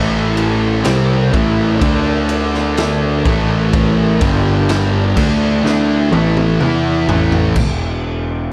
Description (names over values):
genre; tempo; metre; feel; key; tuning
stoner and doom metal; 63 BPM; 4/4; straight; unclear; A4 = 439 Hz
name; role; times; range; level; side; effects
string machine, cellos; sustained chords; 0.0-7.5 s; D4 to A5; -32 LUFS; equal; none
biting overdriven guitar; riff; 0.0-7.5 s; G2 to E4; -24 LUFS; equal; none
thick fuzz guitar; riff; 0.0-7.5 s; G2 to E4; -21 LUFS; equal; distortion
thick fuzz guitar; riff; 0.0-7.6 s; G2 to E4; -20 LUFS; equal; distortion
fuzz picked electric bass; bass; 0.0-8.5 s; E1 to E2; -22 LUFS; equal; overdrive
raw garage drum kit; drums; 0.4-7.8 s; crash cymbal, kick drum, ride cymbal, snare drum, toms; -22 LUFS; equal; none
room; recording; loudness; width
small room ambience; none; -15 LUFS; mono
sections
0.0-7.6 A section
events
drum fill 5.6-7.6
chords
0.0 A5; 1.8 D5; 3.2 A5; 4.2 G5; 5.2 A5; 7.6 N.C.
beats
0.86 1.81 2.77 | 3.73 4.69 5.64 6.60 | 7.55